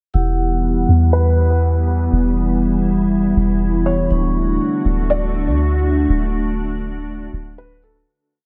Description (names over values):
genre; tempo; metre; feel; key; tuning
hip hop, atmospheric cloud-rap; 121 BPM; 4/4; half-time; E dorian; A4 = 439 Hz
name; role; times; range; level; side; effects
glassy FM pad; sustained chords; 0.4-8.1 s; D3 to F#5; -22 LUFS; equal; ensemble chorus, built-in reverb, low-pass filter
soft 808-style bass; bass; 0.1-8.0 s; D1 to E2; -20 LUFS; equal; none
vibraphone with medium mallets; texture; 0.1-8.0 s; D4 to C#6; -30 LUFS; equal; none
felt-muted upright piano; melody; 1.1-8.1 s; A4 to D5; -26 LUFS; equal; low-pass filter, digital delay
room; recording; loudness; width
light reverb, small room ambience; none; -17 LUFS; mono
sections
0.1-8.1 breakdown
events
filter sweep 0.1-8.1; fade-out 6.1-8.1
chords
0.1 Emadd9; 4.1 Dmaj7